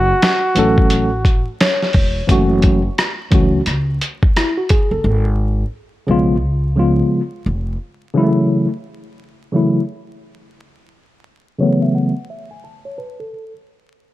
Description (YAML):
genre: hip hop, jazz-hop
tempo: 87 BPM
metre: 4/4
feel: swing 62% on 16ths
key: F# minor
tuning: A4 = 442 Hz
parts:
  - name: trumpet with bucket mute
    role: melody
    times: 0.0-1.6 s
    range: F#4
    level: -17 LUFS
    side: right 1 dB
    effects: none
  - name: upright bass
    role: bass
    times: 0.0-7.8 s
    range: E1 to C#2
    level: -18 LUFS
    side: equal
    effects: none
  - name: lo-fi sampler-style drum kit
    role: drums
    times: 0.2-4.9 s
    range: hi-hat, kick drum, rim click, snare drum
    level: -15 LUFS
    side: equal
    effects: none
  - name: tine electric piano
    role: accompaniment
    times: 0.5-13.5 s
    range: C#3 to A5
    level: -16 LUFS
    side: left 1 dB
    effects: overdrive, fast stereo tremolo, low-pass filter
room: little or no reverb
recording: vinyl crackle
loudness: -14 LUFS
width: side -16 dB against mid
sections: 0.0-2.3 A section; 2.3-13.3 B section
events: tine electric piano fill 1.3-2.3, 11.3-13.3; filter sweep on tine electric piano 2.3-13.3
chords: 0.0 F#m7; 5.0 G#m6; 6.4 C#7; 7.8 F#m7